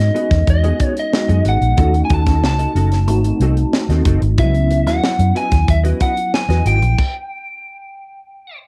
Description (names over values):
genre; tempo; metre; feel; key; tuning
polished 1980s jazz-funk pop; 92 BPM; 4/4; straight; unclear; A4 = 440 Hz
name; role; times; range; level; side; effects
lightly driven lead guitar; melody; 0.0-8.6 s; D#5 to A5; -24 LUFS; equal; cassette tape
tine electric piano; accompaniment; 0.0-7.0 s; F#3 to F#4; -25 LUFS; equal; analog chorus, cassette tape
vintage muted fingered electric bass; bass; 0.0-6.9 s; F#1 to F#2; -17 LUFS; equal; none
tight funk drum kit; drums; 0.0-7.1 s; crash cymbal, hi-hat, kick drum, snare drum; -21 LUFS; equal; cassette tape
clean electric guitar; riff; 0.1-6.9 s; B3 to D#5; -28 LUFS; equal; ensemble chorus, cassette tape
room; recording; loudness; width
light reverb; home recording on cassette; -16 LUFS; mono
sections
0.0-8.7 A section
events
stop 7.0-8.7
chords
0.0 Emaj9; 1.8 D#m7b5; 3.1 G#7b9; 4.4 C#m11; 7.0 N.C.